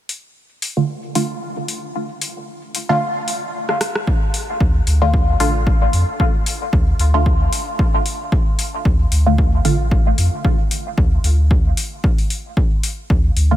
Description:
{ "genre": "dub techno", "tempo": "113 BPM", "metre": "4/4", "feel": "swing 55% on 16ths", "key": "D minor", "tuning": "A4 = 441 Hz", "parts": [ { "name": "deep house drum kit", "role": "drums", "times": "0.1-13.5 s", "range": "hi-hat, rim click", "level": "-24 LUFS", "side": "left 2 dB", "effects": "overdrive, studio ambience" }, { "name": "filtered dub chord stab", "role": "stabs", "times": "0.8-9.8, 13.5-13.6 s", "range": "D3 to F4", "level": "-22 LUFS", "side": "equal", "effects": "chorus, phaser, sidechain pumping, dub echo" }, { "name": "electronic kick drum", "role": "drums", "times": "4.1-13.2 s", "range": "none", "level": "-17 LUFS", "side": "equal", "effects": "studio ambience" }, { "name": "pure sine sub bass", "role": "bass", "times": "4.6-13.6 s", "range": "A1 to F2", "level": "-16 LUFS", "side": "equal", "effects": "tube saturation, sidechain pumping" } ], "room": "light reverb", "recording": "none", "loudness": "-15 LUFS", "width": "side -13 dB against mid", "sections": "0.0-4.1 A section; 4.1-13.6 B section", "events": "filter sweep on synth stab 0.0-4.1, 4.1-13.6; kick drops out 1.9-4.1; drum fill 3.7-4.1", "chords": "0.0 Dm" }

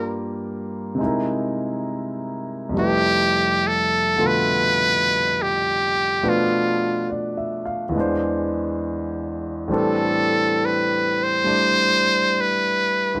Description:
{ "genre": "jazz ballad", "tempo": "69 BPM", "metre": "4/4", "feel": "swing 67% on 8ths", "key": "unclear", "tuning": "A4 = 440 Hz", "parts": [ { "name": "trumpet with metal mute", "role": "melody", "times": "0.0-13.2 s", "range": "F4 to C5", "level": "-21 LUFS", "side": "equal", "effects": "none" }, { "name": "clear concert grand piano", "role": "accompaniment", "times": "0.0-13.2 s", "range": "D2 to F5", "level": "-25 LUFS", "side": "equal", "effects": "none" } ], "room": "light reverb", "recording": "close, detailed microphones", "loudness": "-21 LUFS", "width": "mono", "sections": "0.0-13.2 A section", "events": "none", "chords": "0.0 Gm7; 1.0 C7alt; 2.7 Fmaj9#11; 6.2 Bm7b5; 7.9 E7b13; 9.7 Am11" }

